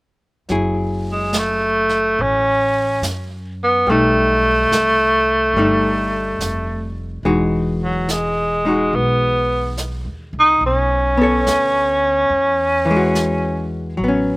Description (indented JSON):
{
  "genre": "jazz",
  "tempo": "71 BPM",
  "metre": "4/4",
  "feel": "swing 68% on 8ths",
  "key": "F# minor",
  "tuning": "A4 = 440 Hz",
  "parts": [
    { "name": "archtop guitar, miked and amplified", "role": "accompaniment", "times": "0.5-14.4 s", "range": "E3 to C#5", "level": "-20 LUFS", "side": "left 1 dB", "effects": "none" },
    { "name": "upright bass", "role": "bass", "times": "0.5-14.4 s", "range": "E1 to F#2", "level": "-25 LUFS", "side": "equal", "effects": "none" },
    { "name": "jazz brush drum kit", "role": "drums", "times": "0.5-14.4 s", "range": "brushed snare drum, hi-hat, snare drum", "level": "-27 LUFS", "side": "right 2 dB", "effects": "none" },
    { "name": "clear tenor saxophone", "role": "melody", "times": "1.1-13.7 s", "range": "F#3 to D#4", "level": "-16 LUFS", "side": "equal", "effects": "slapback echo" }
  ],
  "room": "little or no reverb",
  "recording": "recorded outdoors, with no room sound",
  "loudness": "-15 LUFS",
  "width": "side -24 dB against mid",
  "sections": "0.5-14.4 A section",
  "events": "none",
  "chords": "0.5 F#m9; 3.9 Baug7; 7.2 Emaj9; 10.6 Bm9; 12.3 Eadd9"
}